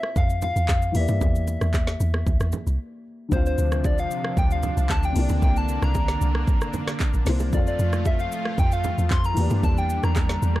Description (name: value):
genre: amapiano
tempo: 114 BPM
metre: 4/4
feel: straight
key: unclear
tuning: A4 = 440 Hz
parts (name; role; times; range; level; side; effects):
- soft struck synth lead; melody; 0.0-10.6 s; C5 to C6; -29 LUFS; left 1 dB; chorus, digital delay
- dark baby grand piano; accompaniment; 0.0-10.6 s; C3 to F5; -32 LUFS; left 4 dB; none
- afro-pop drum kit; drums; 0.0-10.6 s; handclaps, hi-hat, kick drum, rim click, shaker, snare drum; -24 LUFS; equal; none
- deep log drum bass; bass; 0.2-10.6 s; Bb1 to G2; -23 LUFS; equal; none
- congas and bongos; percussion; 0.2-10.3 s; none; -33 LUFS; right 4 dB; none
- lush unison pad; sustained chords; 3.3-10.6 s; C3 to F4; -31 LUFS; equal; chorus
room: little or no reverb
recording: dark, warm production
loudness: -20 LUFS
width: side -16 dB against mid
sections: 0.0-10.6 A section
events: break 2.8-3.3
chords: 0.0 Fmaj7; 0.9 Em7b5; 3.3 Dm7; 5.2 C9; 7.5 F; 9.4 Em7b5